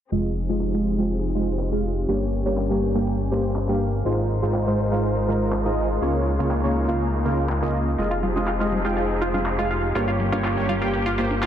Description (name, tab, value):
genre	progressive house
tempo	122 BPM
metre	4/4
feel	straight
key	F minor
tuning	A4 = 440 Hz
part	rich studio string section	sustained chords	0.1-11.5 s	Db3 to C5	-29 LUFS	left 1 dB	vintage 12-bit sampler grit, low-pass filter
part	soft supersaw	stabs	0.1-11.2 s	G2 to G5	-24 LUFS	right 1 dB	dub echo
part	fat analog bass	bass	0.1-11.5 s	F1 to Db2	-26 LUFS	left 1 dB	tube saturation
part	deep house drum kit	drums	0.1-11.5 s	handclaps, hi-hat	-35 LUFS	left 1 dB	low-pass filter on hats, low-pass filter on snare, low-pass filter on room
part	analog pluck	arpeggios	8.1-11.5 s	F4	-27 LUFS	equal	lush chorus, dub echo
part	congas	percussion	8.2-11.4 s	none	-31 LUFS	left 2 dB	none
room	light reverb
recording	dense, heavily limited modern master, low-pass filter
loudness	-20 LUFS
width	side -10 dB against mid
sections	0.1-11.5 A section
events	filter sweep on string section 0.1-11.5; filter sweep 0.1-11.5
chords	0.1 Fm7; 2.1 Gdim; 4.1 Ab6; 6.0 Db6; 8.0 Fm7; 10.0 Gdim